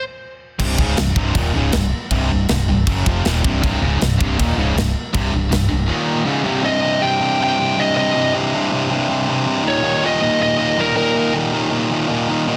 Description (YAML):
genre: heavy metal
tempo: 159 BPM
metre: 4/4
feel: straight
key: C phrygian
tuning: A4 = 440 Hz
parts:
  - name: cranked stack guitar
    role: riff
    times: 0.6-6.6 s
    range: C2 to F#3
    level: -28 LUFS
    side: equal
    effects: overdrive
  - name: heavy high-gain guitar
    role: riff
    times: 0.6-12.6 s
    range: C2 to F#3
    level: -21 LUFS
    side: equal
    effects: distortion
  - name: mellow fretless electric bass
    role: bass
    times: 0.6-5.9 s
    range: C1 to F#1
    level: -22 LUFS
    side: equal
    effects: none
  - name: tight metal drum kit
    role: drums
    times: 0.6-5.6 s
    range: crash cymbal, kick drum, snare drum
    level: -24 LUFS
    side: equal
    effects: none
  - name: heavy high-gain guitar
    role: riff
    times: 3.6-6.6 s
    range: C2 to Eb3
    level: -27 LUFS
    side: equal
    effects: distortion
  - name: high-gain lead guitar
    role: melody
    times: 6.7-11.3 s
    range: Bb4 to G5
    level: -21 LUFS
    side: equal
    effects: distortion
room: light reverb, small room ambience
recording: dense, heavily limited modern master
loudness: -18 LUFS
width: mono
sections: 0.6-6.6 A section; 6.6-12.6 B section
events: stop 0.0-0.6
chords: 0.0 N.C.; 0.6 Cm; 5.9 Eb5; 6.3 C5; 6.6 Cm; 9.7 Eb5